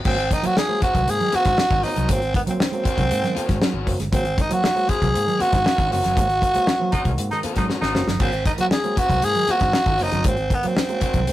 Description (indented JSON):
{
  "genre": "funk",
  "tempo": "118 BPM",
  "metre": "4/4",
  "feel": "straight",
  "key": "Ab mixolydian",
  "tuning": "A4 = 437 Hz",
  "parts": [
    { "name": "mellow clav", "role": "stabs", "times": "0.0-11.3 s", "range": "Ab2 to C4", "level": "-31 LUFS", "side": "right 2 dB", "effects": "none" },
    { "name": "damped 70s drum kit", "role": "drums", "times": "0.0-11.3 s", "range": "crash cymbal, hi-hat, kick drum, snare drum", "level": "-22 LUFS", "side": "left 1 dB", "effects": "none" },
    { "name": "raspy tenor saxophone", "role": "melody", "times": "0.1-11.3 s", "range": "Cb4 to Ab4", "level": "-21 LUFS", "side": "right 1 dB", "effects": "none" },
    { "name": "mellow electric guitar", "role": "riff", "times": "0.1-11.2 s", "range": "Eb3 to Ab3", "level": "-29 LUFS", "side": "right 4 dB", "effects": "vibrato effect" },
    { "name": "vintage muted fingered electric bass", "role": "bass", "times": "0.1-11.3 s", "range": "Gb1 to Ab2", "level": "-27 LUFS", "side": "equal", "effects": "none" },
    { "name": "overdriven electric guitar", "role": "accompaniment", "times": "0.8-11.2 s", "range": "C4 to C5", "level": "-31 LUFS", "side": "left 4 dB", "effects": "none" },
    { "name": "raspy baritone saxophone", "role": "second line", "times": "6.9-8.2 s", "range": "Eb4", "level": "-27 LUFS", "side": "equal", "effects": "none" }
  ],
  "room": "moderate studio reverb, RT60 0.6 s",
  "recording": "rough rehearsal-room recording, warm saturation",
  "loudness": "-18 LUFS",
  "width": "side -14 dB against mid",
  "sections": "0.1-11.3 A section",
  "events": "band accent 6.2-8.2; drum fill 7.7-8.2",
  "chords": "0.1 Ab9"
}